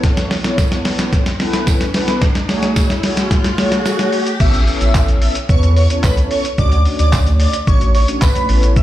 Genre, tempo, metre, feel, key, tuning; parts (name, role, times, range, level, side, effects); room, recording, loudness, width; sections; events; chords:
dance-pop; 110 BPM; 4/4; straight; A major; A4 = 445 Hz
mellow synth brass; accompaniment; 0.0-8.8 s; A3 to C#5; -21 LUFS; left 1 dB; chorus, sidechain pumping
trip hop sampler-style drum kit; drums; 0.0-8.8 s; crash cymbal, handclaps, hi-hat, kick drum, shaker, snare drum; -16 LUFS; equal
riser; sound effects; 0.0-4.4 s; -25 LUFS; left 1 dB
tambourine; percussion; 0.6-8.3 s; -31 LUFS; right 13 dB
airy dreamy lead; melody; 4.4-8.8 s; B4 to E5; -21 LUFS; right 1 dB; chorus, tape echo
warm sub bass; bass; 4.4-8.8 s; A1 to E2; -14 LUFS; equal; sidechain pumping
light reverb; played on a big sound system in a bare room, large studio reverb; -12 LUFS; side -14 dB against mid
0.0-4.4 A section; 4.4-8.8 B section
build-up 0.0-4.4; drum fill 0.0-4.4; riser 0.0-4.4; drop 4.4-8.8
0.0 Aadd9; 2.2 F#madd9; 4.4 Aadd9; 6.6 Dmaj7